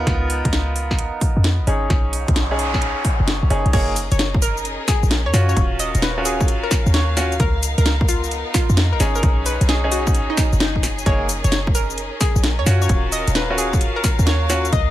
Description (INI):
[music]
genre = UK garage, two-step garage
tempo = 131 BPM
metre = 4/4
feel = swing 67% on 16ths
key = Eb minor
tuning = A4 = 440 Hz
[part]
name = bright concert grand piano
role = stabs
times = 0.0-14.6 s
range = Bb3 to Bb4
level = -24 LUFS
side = equal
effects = tape echo
[part]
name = short 808-style bass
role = bass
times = 0.0-14.9 s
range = Eb1 to Gb2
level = -20 LUFS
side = equal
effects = sidechain pumping
[part]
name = electronic kick drum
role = drums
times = 0.1-14.8 s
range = none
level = -19 LUFS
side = equal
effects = small room ambience
[part]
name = house drum kit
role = drums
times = 0.1-14.8 s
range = crash cymbal, hi-hat, shaker, snare drum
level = -23 LUFS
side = left 1 dB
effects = small room ambience
[part]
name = noise sweep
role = sound effects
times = 2.1-3.7 s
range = none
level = -28 LUFS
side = left 1 dB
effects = none
[part]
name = hollow square pluck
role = melody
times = 3.7-14.9 s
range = D#4 to Eb5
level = -25 LUFS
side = equal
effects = chorus, tape echo
[part]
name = warm symphonic violin section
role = sustained chords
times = 3.7-14.9 s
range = Cb4 to F5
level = -29 LUFS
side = left 2 dB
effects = sidechain pumping
[sound]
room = little or no reverb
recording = none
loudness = -16 LUFS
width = side -14 dB against mid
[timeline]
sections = 0.0-3.7 A section; 3.7-14.9 B section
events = noise sweep 2.1-3.7; drop 3.7-14.9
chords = 0.1 Db13; 1.9 B69; 3.7 Gb69; 5.6 Ebm9; 7.4 Db13; 9.2 B69; 11.1 Gb69; 12.9 Ebm9